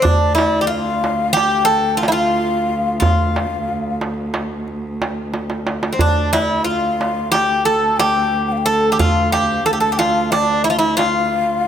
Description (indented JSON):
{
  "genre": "Turkish makam ensemble",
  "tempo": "181 BPM (eighths)",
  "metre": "9/8",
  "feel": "straight",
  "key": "D makam huseyni",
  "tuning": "A4 = 440 Hz",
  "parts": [
    { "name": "Greek bouzouki", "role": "melody", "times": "0.0-11.7 s", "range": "C4 to A4", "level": "-17 LUFS", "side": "right 1 dB", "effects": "none" },
    { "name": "breathy mellow ney", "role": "second line", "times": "0.0-11.7 s", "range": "D5 to A5", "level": "-21 LUFS", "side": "left 5 dB", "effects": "none" },
    { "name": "rich cello", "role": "drone", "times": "0.0-11.7 s", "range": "D2", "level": "-24 LUFS", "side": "right 2 dB", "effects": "none" },
    { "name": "darbuka", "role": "percussion", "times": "0.0-11.7 s", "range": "none", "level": "-21 LUFS", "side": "right 2 dB", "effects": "none" }
  ],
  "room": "moderate concert hall reverb, RT60 2.0 s",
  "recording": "none",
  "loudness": "-15 LUFS",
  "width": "side -9 dB against mid",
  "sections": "0.0-11.7 A section",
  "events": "drum fill 5.3-6.0",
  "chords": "none"
}